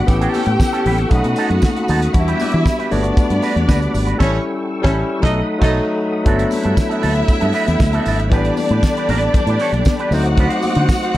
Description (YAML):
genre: disco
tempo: 117 BPM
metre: 4/4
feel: straight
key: unclear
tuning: A4 = 438 Hz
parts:
  - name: rich studio violin section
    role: second line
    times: 0.0-11.2 s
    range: C#4 to G5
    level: -22 LUFS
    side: equal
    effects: none
  - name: barky tine electric piano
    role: accompaniment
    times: 0.0-11.2 s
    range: E3 to G4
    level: -21 LUFS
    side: left 2 dB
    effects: none
  - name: tonewheel organ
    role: sustained chords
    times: 0.0-11.2 s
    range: G3 to E6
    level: -27 LUFS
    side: equal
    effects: chorus vibrato, slow rotary speaker
  - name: electric guitar with an envelope filter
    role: accompaniment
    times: 0.1-11.2 s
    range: B3 to C#5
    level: -26 LUFS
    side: right 5 dB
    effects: none
  - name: fingered electric bass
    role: bass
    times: 0.1-11.2 s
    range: G1 to E3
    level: -18 LUFS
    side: equal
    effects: none
  - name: damped 70s drum kit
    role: drums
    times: 0.1-11.2 s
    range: crash cymbal, hi-hat, kick drum, snare drum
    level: -18 LUFS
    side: equal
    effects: none
  - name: congas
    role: percussion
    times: 0.1-11.2 s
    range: none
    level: -29 LUFS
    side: left 3 dB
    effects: none
  - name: tambourine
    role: percussion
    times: 0.1-11.2 s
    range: none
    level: -39 LUFS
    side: right 5 dB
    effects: none
room: light reverb, small room ambience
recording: dark, warm production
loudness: -14 LUFS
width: side -15 dB against mid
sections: 0.0-6.3 A section; 6.3-11.2 B section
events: band accent 4.2-6.3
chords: 0.1 A7; 1.1 B7; 2.1 Em7; 2.9 Gmaj7; 4.2 A7; 5.2 B7; 6.3 Gmaj9; 8.3 A9sus4; 10.1 D7b9